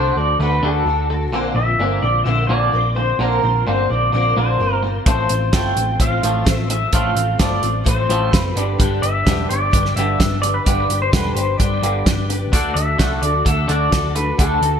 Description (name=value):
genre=folk rock and heartland rock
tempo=129 BPM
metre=4/4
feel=straight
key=unclear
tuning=A4 = 440 Hz
part: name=pedal steel guitar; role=melody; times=0.0-14.8 s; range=A4 to G5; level=-20 LUFS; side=equal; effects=digital delay
part: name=picked steel-string acoustic guitar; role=accompaniment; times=0.0-14.8 s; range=A2 to C5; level=-26 LUFS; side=left 6 dB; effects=ensemble chorus
part: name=twangy electric guitar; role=riff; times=0.0-14.8 s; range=G2 to D4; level=-24 LUFS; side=right 1 dB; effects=lush chorus
part: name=hollow-body short-scale picked electric bass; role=bass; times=0.0-14.8 s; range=E1 to D2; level=-21 LUFS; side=equal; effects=none
part: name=damped 70s drum kit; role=drums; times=5.1-14.7 s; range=hi-hat, kick drum, snare drum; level=-18 LUFS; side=right 1 dB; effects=none
room=moderate lush hall reverb, RT60 1.7 s, small room ambience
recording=bright 1980s-style digital production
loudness=-15 LUFS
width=side -7 dB against mid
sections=0.0-12.5 A section; 12.5-14.8 A section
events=none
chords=0.0 D; 1.3 Bbadd9; 5.1 F; 8.6 G; 12.5 D